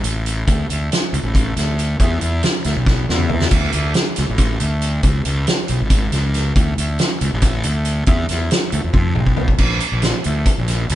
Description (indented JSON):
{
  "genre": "math rock and midwest emo",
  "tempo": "276 BPM (eighths)",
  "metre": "7/8",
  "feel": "straight",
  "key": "unclear",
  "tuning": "A4 = 440 Hz",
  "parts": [
    { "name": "fuzz fingered electric bass", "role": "bass", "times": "0.0-10.9 s", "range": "G#1 to F2", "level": "-19 LUFS", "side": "equal", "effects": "overdrive" },
    { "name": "loose indie drum kit", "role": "drums", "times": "0.0-10.9 s", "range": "crash cymbal, hi-hat, kick drum, snare drum, toms", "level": "-18 LUFS", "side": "equal", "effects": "none" }
  ],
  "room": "light reverb",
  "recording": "band playing live in one room, nothing above 10.9 kHz",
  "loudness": "-15 LUFS",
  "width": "side -13 dB against mid",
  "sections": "0.0-9.6 A section; 9.6-10.9 B section",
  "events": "drum fill 2.9-3.5, 8.9-9.6",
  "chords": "none",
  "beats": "0.04 0.26 | 0.47 0.69 0.91 1.13 1.34 1.56 1.78 | 2.00 2.21 2.43 2.65 2.87 3.08 3.30 | 3.52 3.73 3.95 4.17 4.39 4.61 4.82 | 5.04 5.26 5.47 5.69 5.91 6.12 6.34 | 6.56 6.78 6.99 7.21 7.42 7.64 7.86 | 8.07 8.29 8.51 8.72 8.94 9.16 9.38 | 9.59 9.81 10.03 10.24 10.46 10.68 10.89"
}